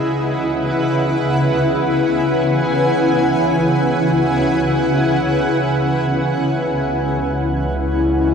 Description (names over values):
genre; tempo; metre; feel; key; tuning
ambient; free time; none; none; unclear; A4 = 441 Hz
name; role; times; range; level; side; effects
granular cloud pad; sustained chords; 0.0-8.3 s; C#3 to G#5; -15 LUFS; equal; built-in reverb
clear symphonic double bass section; bass; 6.7-8.3 s; C#2; -23 LUFS; right 1 dB; tube saturation
room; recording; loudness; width
wet concert hall reverb, RT60 2.4 s; dark, warm production; -15 LUFS; side -6 dB against mid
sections
0.0-6.7 A section; 6.7-8.3 B section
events
none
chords
0.0 Eadd9/C#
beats
free time